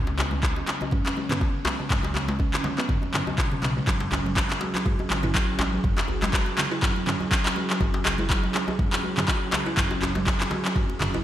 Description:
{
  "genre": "afro house",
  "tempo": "122 BPM",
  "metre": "4/4",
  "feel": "swing 56% on 16ths",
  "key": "unclear",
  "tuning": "A4 = 440 Hz",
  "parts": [
    { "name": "ethereal airy pad", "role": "sustained chords", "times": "0.1-11.2 s", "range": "C#3 to G#4", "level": "-34 LUFS", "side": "equal", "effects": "ensemble chorus, built-in reverb, sidechain pumping" },
    { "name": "buzzing kalimba", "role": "arpeggios", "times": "0.0-11.2 s", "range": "B2 to F#4", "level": "-30 LUFS", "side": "right 1 dB", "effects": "sidechain pumping, low-pass filter, digital delay" },
    { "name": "smooth gliding synth bass", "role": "bass", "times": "0.0-11.2 s", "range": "F#1 to C#2", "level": "-31 LUFS", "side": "equal", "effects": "sidechain pumping" },
    { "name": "djembe", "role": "percussion", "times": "0.1-11.2 s", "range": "none", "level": "-34 LUFS", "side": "left 2 dB", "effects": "none" },
    { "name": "deep house drum kit", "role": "drums", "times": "0.2-11.1 s", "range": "handclaps, toms", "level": "-26 LUFS", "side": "equal", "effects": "overdrive, gated reverb" },
    { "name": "congas", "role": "percussion", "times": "0.2-11.1 s", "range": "none", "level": "-35 LUFS", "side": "right 2 dB", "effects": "none" },
    { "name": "electronic kick drum", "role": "drums", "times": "0.4-10.9 s", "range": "none", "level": "-26 LUFS", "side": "equal", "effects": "overdrive" }
  ],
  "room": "light reverb, small room reverb",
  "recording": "bright 1980s-style digital production",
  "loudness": "-22 LUFS",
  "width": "side -12 dB against mid",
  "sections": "0.0-11.2 A section",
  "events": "none",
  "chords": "0.0 C#7(no3); 3.9 F#5",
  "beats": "0.43 0.92 1.42 | 1.91 2.40 2.89 3.38 | 3.88 4.37 4.86 5.35 | 5.84 6.33 6.83 7.32 | 7.81 8.30 8.79 9.28 | 9.78 10.27 10.76"
}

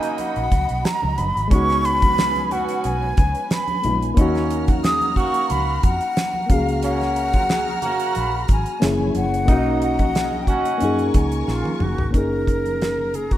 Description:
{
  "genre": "lush 1970s-style soul",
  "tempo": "90 BPM",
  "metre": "4/4",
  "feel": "swing 54% on 16ths",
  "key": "unclear",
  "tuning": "A4 = 442 Hz",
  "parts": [
    { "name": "breathy concert flute", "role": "melody", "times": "0.0-13.4 s", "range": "E#4 to D#6", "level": "-23 LUFS", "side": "equal", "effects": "slapback echo" },
    { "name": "warm symphonic string section", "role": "second line", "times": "0.0-13.4 s", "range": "C#4 to E#6", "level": "-32 LUFS", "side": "left 2 dB", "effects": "none" },
    { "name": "reed electric piano", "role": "accompaniment", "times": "0.0-13.4 s", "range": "G#3 to G#4", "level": "-25 LUFS", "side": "left 2 dB", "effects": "none" },
    { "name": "mellow horn section", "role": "stabs", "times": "0.0-11.1 s", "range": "F#3 to G#4", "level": "-27 LUFS", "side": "right 4 dB", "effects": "none" },
    { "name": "damped 70s drum kit", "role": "drums", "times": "0.0-13.4 s", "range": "hi-hat, kick drum, snare drum, toms", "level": "-20 LUFS", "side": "equal", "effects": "none" },
    { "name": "congas", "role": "percussion", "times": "0.2-13.3 s", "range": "none", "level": "-33 LUFS", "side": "right 1 dB", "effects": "none" },
    { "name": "vintage muted fingered electric bass", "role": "bass", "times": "0.4-13.4 s", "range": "F#1 to F#2", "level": "-26 LUFS", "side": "equal", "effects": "none" }
  ],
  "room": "moderate lush hall reverb, RT60 1.6 s, studio reverb",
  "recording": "rough home demo mix",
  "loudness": "-18 LUFS",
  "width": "side -13 dB against mid",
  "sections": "0.0-12.1 A section; 12.1-13.4 B section",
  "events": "drum fill 11.5-12.1",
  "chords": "0.0 Bmaj9; 1.5 C#7sus4; 4.2 D#m9; 6.5 F#maj7/C#; 8.8 F#9; 9.5 Bmaj9; 10.8 F#69",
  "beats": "0.18 0.85 | 1.51 2.18 2.84 3.51 | 4.17 4.84 5.50 6.16 | 6.83 7.49 8.16 8.82 | 9.48 10.15 10.81 11.48 | 12.14 12.80"
}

